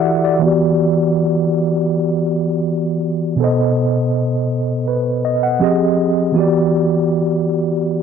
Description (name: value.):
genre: R&B.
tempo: 81 BPM.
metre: 4/4.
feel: straight.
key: E minor.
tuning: A4 = 440 Hz.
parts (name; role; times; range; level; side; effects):
mellow tine electric piano; solo; 0.0-8.0 s; B2 to F#5; -14 LUFS; equal; medium stereo tremolo, low-pass filter.
room: light reverb.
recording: dry, gritty hardware recording, cassette tape.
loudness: -14 LUFS.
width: side -7 dB against mid.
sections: 0.4-8.0 A section.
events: filter sweep on tine electric piano 0.4-8.0.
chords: 0.4 Em7; 3.4 B7b9; 5.6 Fm7; 6.4 Em7.